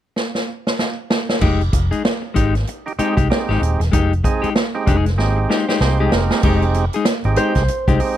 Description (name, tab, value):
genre	funk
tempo	96 BPM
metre	4/4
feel	swing 60% on 16ths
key	F minor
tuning	A4 = 440 Hz
part	swinging big-band drum kit	drums	0.2-8.2 s	crash cymbal, hi-hat, kick drum, snare drum	-19 LUFS	right 1 dB	none
part	clean electric guitar	accompaniment	1.4-8.0 s	Ab3 to Ab4	-22 LUFS	left 6 dB	none
part	vintage muted fingered electric bass	bass	1.4-8.0 s	Eb1 to C2	-18 LUFS	equal	none
part	overdriven tonewheel organ	stabs	2.9-8.2 s	G3 to D5	-23 LUFS	right 5 dB	none
part	Celtic harp	melody	7.4-8.2 s	C5	-21 LUFS	right 2 dB	none
room	small room ambience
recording	none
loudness	-15 LUFS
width	side -12 dB against mid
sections	0.0-1.4 A section; 1.4-6.4 B section; 6.4-8.2 C section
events	drum fill 0.2-1.4, 5.2-6.4; tonewheel organ fill 5.2-6.4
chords	0.0 N.C.; 1.4 Fm9